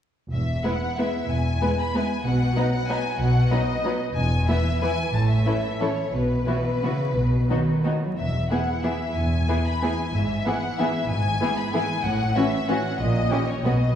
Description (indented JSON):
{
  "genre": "classical",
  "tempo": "165-205 BPM",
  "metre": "3/4",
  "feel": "rubato",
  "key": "E major",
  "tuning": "A4 = 440 Hz",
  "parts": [
    { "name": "warm studio violin section", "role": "melody", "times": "0.3-14.0 s", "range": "B4 to B5", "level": "-28 LUFS", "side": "left 3 dB", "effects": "none" },
    { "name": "warm chamber double bass section", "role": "bass", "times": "0.3-13.9 s", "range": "E1 to B1", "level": "-27 LUFS", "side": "equal", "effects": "none" },
    { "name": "warm studio cello section", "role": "bass", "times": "0.3-13.9 s", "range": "E2 to F#3", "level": "-26 LUFS", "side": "equal", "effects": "none" },
    { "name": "rich studio violin section", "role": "second line", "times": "0.6-13.7 s", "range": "C#4 to B4", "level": "-30 LUFS", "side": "left 2 dB", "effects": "none" },
    { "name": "rich studio viola section", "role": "accompaniment", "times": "0.6-13.7 s", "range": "E3 to C#4", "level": "-29 LUFS", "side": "right 1 dB", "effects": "none" }
  ],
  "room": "wet scoring stage reverb, RT60 1.7 s",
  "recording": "heard from further back in the room, vinyl crackle",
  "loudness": "-21 LUFS",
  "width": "side -9 dB against mid",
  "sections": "0.3-14.0 A section",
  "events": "none",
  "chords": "0.3 E; 2.3 B; 4.2 E; 5.1 A; 6.1 Bsus4; 7.2 B; 8.2 E; 10.1 E/G#; 12.0 F#m7/A; 13.0 A#dim",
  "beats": "| 0.32 0.64 0.98 | 1.30 1.61 1.95 | 2.25 2.56 2.89 | 3.20 3.52 3.85 | 4.17 4.48 4.82 | 5.13 5.46 5.80 | 6.13 6.47 6.83 | 7.16 7.50 7.85 | 8.18 8.50 8.84 | 9.16 9.49 9.83 | 10.14 10.46 10.79 | 11.10 11.41 11.74 | 12.04 12.36 12.69 | 12.99 13.31 13.65"
}